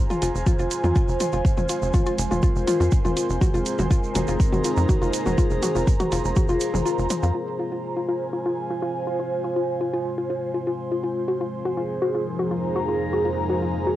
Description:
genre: melodic techno.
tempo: 122 BPM.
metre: 4/4.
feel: straight.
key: F minor.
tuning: A4 = 442 Hz.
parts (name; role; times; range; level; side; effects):
deep dark ambient pad; sustained chords; 0.3-14.0 s; F2 to C5; -30 LUFS; equal; chorus, built-in reverb, sidechain pumping, cassette tape.
airy breathy pad; texture; 0.0-14.0 s; F3 to Bb5; -28 LUFS; right 1 dB; chorus, phaser, sidechain pumping, cassette tape.
woody wave-folded pluck; arpeggios; 0.1-13.9 s; F4 to F5; -27 LUFS; left 2 dB; chorus, cassette tape, sidechain pumping, tape echo.
house drum kit; drums; 0.1-7.2 s; hi-hat, toms; -30 LUFS; left 1 dB; studio reverb.
tube shaker; percussion; 0.1-7.3 s; none; -36 LUFS; right 9 dB; none.
tight sequencer bass; bass; 0.2-7.3 s; F1 to F2; -25 LUFS; equal; sidechain pumping.
electronic kick drum; drums; 0.5-6.5 s; none; -20 LUFS; equal; studio reverb.
room: light reverb.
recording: home recording on cassette.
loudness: -21 LUFS.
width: side -14 dB against mid.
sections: 0.0-7.3 A section; 7.3-14.0 B section.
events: kick drops out 6.9-7.3.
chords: 0.0 Fm; 3.4 Abadd9/F; 7.3 Fm; 11.3 Abadd9/F.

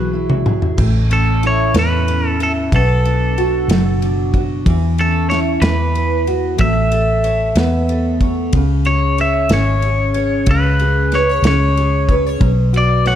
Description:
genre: six-eight pop ballad.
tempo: 62 BPM (dotted quarters).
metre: 6/8.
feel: straight.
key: A major.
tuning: A4 = 440 Hz.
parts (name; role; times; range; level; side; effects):
electric guitar at the edge of break-up; melody; 0.0-13.2 s; A4 to F#5; -19 LUFS; left 1 dB; spring reverb, slapback echo.
fingerpicked steel-string acoustic guitar; accompaniment; 0.0-13.2 s; A2 to C#5; -19 LUFS; equal; double-tracked left and right.
vintage muted fingered electric bass; bass; 0.0-13.2 s; F#1 to E2; -17 LUFS; equal; none.
modern studio drum kit; drums; 0.3-13.2 s; crash cymbal, kick drum, ride cymbal, snare drum, toms; -20 LUFS; equal; none.
room: small room reverb.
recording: none.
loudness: -13 LUFS.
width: side -10 dB against mid.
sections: 0.0-13.2 A section.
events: drum fill 0.0-0.8.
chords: 0.0 Eadd9; 0.8 A; 2.7 Bm; 4.7 A/E; 5.6 Esus2; 6.6 Aadd9; 8.5 C#5; 10.5 G#madd11/C#; 12.4 Bsus2.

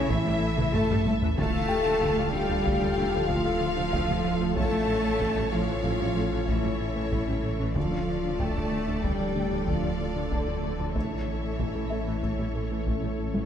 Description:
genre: cinematic, hybrid orchestral and electronic film score.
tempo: 94 BPM.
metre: 5/4.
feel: straight.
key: D harmonic minor.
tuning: A4 = 440 Hz.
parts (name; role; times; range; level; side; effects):
rich symphonic violin section; melody; 0.0-13.5 s; C#5 to F5; -36 LUFS; left 4 dB; none.
warm symphonic violin section; second line; 0.0-13.5 s; D5 to A5; -38 LUFS; left 2 dB; none.
warm symphonic viola section; accompaniment; 0.0-13.5 s; E3 to A4; -38 LUFS; right 2 dB; none.
clear trombone section; sustained chords; 0.0-13.5 s; A2 to F4; -38 LUFS; right 4 dB; none.
glassy FM pad; sustained chords; 0.0-13.5 s; C#3 to A4; -37 LUFS; left 1 dB; ensemble chorus, built-in reverb.
mellow French horn section; sustained chords; 0.0-13.5 s; D4 to A4; -32 LUFS; left 4 dB; none.
harp-like synth pluck; arpeggios; 0.0-13.4 s; D3 to A4; -38 LUFS; right 2 dB; none.
fat analog bass; riff; 0.0-13.4 s; D2 to A3; -36 LUFS; left 3 dB; none.
rich symphonic cello section; bass; 0.0-13.5 s; D3 to A3; -33 LUFS; right 2 dB; none.
sub bass with octave; bass; 0.0-13.5 s; D1 to A1; -35 LUFS; equal; none.
felt-muted upright piano; texture; 0.0-13.5 s; C#4 to A5; -41 LUFS; left 2 dB; none.
warm chamber double bass section; bass; 0.1-13.4 s; A1 to D2; -35 LUFS; right 4 dB; none.
taiko ensemble; drums; 0.1-13.5 s; none; -33 LUFS; equal; none.
room: moderate concert hall reverb, RT60 2.0 s.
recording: none.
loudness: -24 LUFS.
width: side -9 dB against mid.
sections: 0.0-13.5 A section.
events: drum fill 0.6-1.4.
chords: 0.0 A; 1.4 Dm; 4.6 A; 7.8 Dm; 10.9 A.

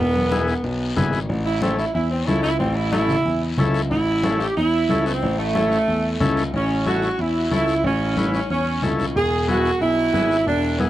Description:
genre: latin, cumbia.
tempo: 183 BPM.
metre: 4/4.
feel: straight.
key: A major.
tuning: A4 = 439 Hz.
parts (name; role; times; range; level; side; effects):
bright saxophone section; melody; 0.0-10.9 s; A3 to G#4; -22 LUFS; right 2 dB; tape echo.
dark grand piano; bass; 0.0-10.9 s; E1 to E2; -23 LUFS; equal; none.
congas; percussion; 0.1-10.9 s; none; -27 LUFS; left 1 dB; none.
combo organ; accompaniment; 0.3-10.9 s; B3 to B4; -24 LUFS; left 4 dB; none.
guiro; percussion; 0.3-10.9 s; none; -36 LUFS; left 6 dB; none.
room: light reverb.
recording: dry, close 1970s-style studio recording.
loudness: -18 LUFS.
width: side -14 dB against mid.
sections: 0.0-6.5 A section; 6.5-10.9 B section.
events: saxophone section solo 0.0-6.5.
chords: 0.0 E; 1.3 A; 9.2 E.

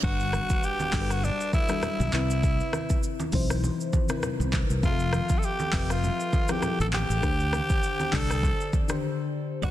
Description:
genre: afrobeats.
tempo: 100 BPM.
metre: 4/4.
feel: swing 55% on 16ths.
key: G major.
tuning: A4 = 439 Hz.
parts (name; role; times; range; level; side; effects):
growling tenor saxophone; melody; 0.0-9.7 s; D4 to A4; -30 LUFS; equal; ping-pong delay.
mellow FM electric piano; accompaniment; 0.0-9.7 s; C3 to E5; -31 LUFS; left 5 dB; chorus.
fingered electric bass; bass; 0.0-9.7 s; F1 to D2; -28 LUFS; equal; none.
deep house drum kit; drums; 0.0-9.7 s; handclaps, hi-hat, kick drum, rim click, shaker; -28 LUFS; equal; vintage 12-bit sampler grit.
reverse cymbal and impact; sound effects; 0.0-2.4 s; none; -39 LUFS; right 2 dB; none.
congas; percussion; 0.3-9.0 s; none; -36 LUFS; right 3 dB; none.
direct-recorded clean electric guitar; riff; 9.6-9.7 s; F#4 to D5; -40 LUFS; right 7 dB; ping-pong delay.
room: light reverb.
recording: dense, heavily limited modern master.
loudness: -24 LUFS.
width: side -13 dB against mid.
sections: 0.0-9.7 A section.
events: impact 0.0-2.4; break 9.0-9.6.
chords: 0.0 Gmaj7; 2.1 Cmaj7; 4.8 Fmaj7; 7.2 D7sus4.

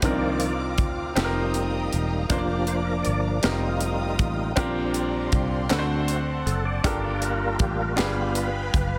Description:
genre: slow gospel.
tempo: 53 BPM (dotted quarters).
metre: 6/8.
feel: straight.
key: Bb major.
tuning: A4 = 439 Hz.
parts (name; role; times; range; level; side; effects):
bright upright piano; accompaniment; 0.0-9.0 s; G2 to D5; -30 LUFS; equal; none.
tonewheel organ; sustained chords; 0.0-9.0 s; Eb3 to D5; -32 LUFS; equal; fast rotary speaker, chorus vibrato.
warm studio string section; sustained chords; 0.0-9.0 s; D5 to Eb6; -39 LUFS; equal; none.
fingered electric bass; bass; 0.0-9.0 s; E1 to D2; -31 LUFS; equal; none.
tight funk drum kit; drums; 0.0-8.9 s; hi-hat, kick drum, snare drum; -29 LUFS; equal; none.
group handclap; percussion; 5.7-8.3 s; none; -38 LUFS; equal; none.
room: light reverb, small room ambience.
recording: dense, heavily limited modern master.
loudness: -25 LUFS.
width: mono.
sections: 0.0-9.0 A section.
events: tonewheel organ solo 0.0-9.0.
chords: 0.0 Cm11; 1.2 F9sus4; 2.3 Bb/F; 3.4 F9sus4; 4.6 Bb69; 5.7 D7; 6.8 Gm9; 8.0 G7b9.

